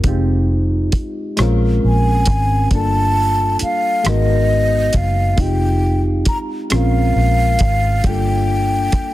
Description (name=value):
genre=slow six-eight R&B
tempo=45 BPM (dotted quarters)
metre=6/8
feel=straight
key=F minor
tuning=A4 = 440 Hz
part: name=barky reed electric piano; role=accompaniment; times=0.0-9.1 s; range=G3 to Bb4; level=-21 LUFS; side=left 1 dB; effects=overdrive, phaser
part: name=vintage muted fingered electric bass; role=bass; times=0.0-9.0 s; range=F1 to Bb1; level=-16 LUFS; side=equal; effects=none
part: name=cloth-damped thuddy drum kit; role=drums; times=0.0-9.1 s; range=hi-hat, kick drum, rim click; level=-19 LUFS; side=equal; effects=none
part: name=breathy mellow concert flute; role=melody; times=1.9-9.1 s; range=Eb5 to Bb5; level=-19 LUFS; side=equal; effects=slapback echo
room=studio reverb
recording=dense, heavily limited modern master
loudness=-14 LUFS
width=side -15 dB against mid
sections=0.0-9.1 A section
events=none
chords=0.0 Fm9; 1.4 Bbm9; 2.7 Gm9; 4.0 Abm9; 5.4 Fm9; 6.7 Bbm9; 8.0 Gm9